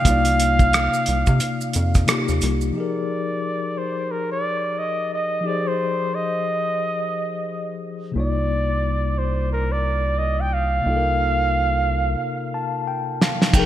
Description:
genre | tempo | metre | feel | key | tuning
R&B, neo-soul | 89 BPM | 4/4 | swing 59% on 16ths | F dorian | A4 = 439 Hz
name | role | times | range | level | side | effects
warm flugelhorn | melody | 0.0-12.9 s | Bb4 to G5 | -23 LUFS | right 1 dB | none
mellow tine electric piano | accompaniment | 0.0-13.7 s | C3 to A5 | -25 LUFS | left 4 dB | fast stereo tremolo
rubbery square bass | bass | 0.1-2.7, 8.2-13.7 s | F1 to C3 | -22 LUFS | equal | none
cloth-damped thuddy drum kit | drums | 0.1-2.6, 13.2-13.7 s | crash cymbal, hi-hat, kick drum, rim click, snare drum | -19 LUFS | right 1 dB | gated reverb
maracas and finger snaps | percussion | 0.1-2.7, 13.5-13.7 s | none | -35 LUFS | right 6 dB | none
room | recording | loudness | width
moderate lush hall reverb, RT60 2.6 s | bright 1980s-style digital production | -19 LUFS | side -12 dB against mid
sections
0.0-2.8 A section; 2.8-13.5 B section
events
break 12.2-13.5; tine electric piano fill 12.2-13.5; drum fill 12.9-13.5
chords
0.0 Cm11; 2.8 Fm11; 8.1 Cm11

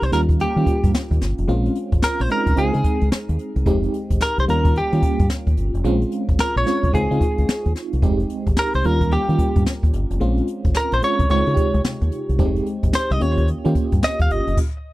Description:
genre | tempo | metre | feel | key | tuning
R&B, new jack swing | 110 BPM | 4/4 | swing 62% on 16ths | unclear | A4 = 443 Hz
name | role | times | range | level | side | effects
direct-recorded clean electric guitar | melody | 0.0-14.6 s | G4 to F5 | -23 LUFS | equal | none
FM electric piano with tremolo | accompaniment | 0.0-14.6 s | C3 to Ab4 | -24 LUFS | right 1 dB | phaser
deep dub fingered electric bass | bass | 0.0-14.5 s | F1 to Eb3 | -20 LUFS | equal | none
jazz brush drum kit | drums | 0.0-14.7 s | crash cymbal, hi-hat, kick drum, snare drum | -21 LUFS | equal | none
room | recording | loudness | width
little or no reverb | dry, close 1970s-style studio recording | -17 LUFS | side -17 dB against mid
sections
0.0-14.9 A section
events
stop 14.6-14.9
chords
0.1 Eb7; 1.5 Bbm7; 2.6 Dbmaj7; 3.7 Fm9; 4.5 Eb7; 5.8 Bbm7; 6.9 Dbmaj7; 8.0 Fm9; 8.8 Eb7; 10.2 Bbm7; 11.3 Dbmaj7; 12.4 Fm9; 13.2 Eb7

